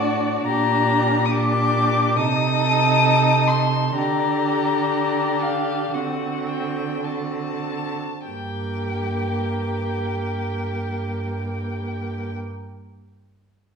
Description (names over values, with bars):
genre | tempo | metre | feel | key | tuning
classical, slow romantic movement for string quartet | 46-72 BPM | 4/4 | rubato | G minor | A4 = 440 Hz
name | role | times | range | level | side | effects
muted violin | melody | 0.0-12.3 s | D5 to Eb6 | -25 LUFS | left 6 dB | none
muted violin | second line | 0.0-12.3 s | F#4 to A4 | -27 LUFS | left 2 dB | none
muted viola | accompaniment | 0.0-12.3 s | Bb3 to Eb4 | -26 LUFS | right 2 dB | none
muted cello | bass | 0.0-12.3 s | G2 to D3 | -25 LUFS | right 3 dB | none
room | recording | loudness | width
wet recital hall reverb, RT60 1.3 s | recorded in a church or concert hall | -20 LUFS | side -5 dB against mid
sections
0.0-8.3 A section; 8.3-12.7 B section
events
slowing down 0.0-8.3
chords
0.5 Gm/Bb; 2.2 Adim/C; 4.0 Gm/D; 5.9 D7; 8.3 Gm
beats
| 0.47 1.32 2.16 3.04 | 3.96 4.93 5.94 7.05 | 8.27 9.39 10.49 11.60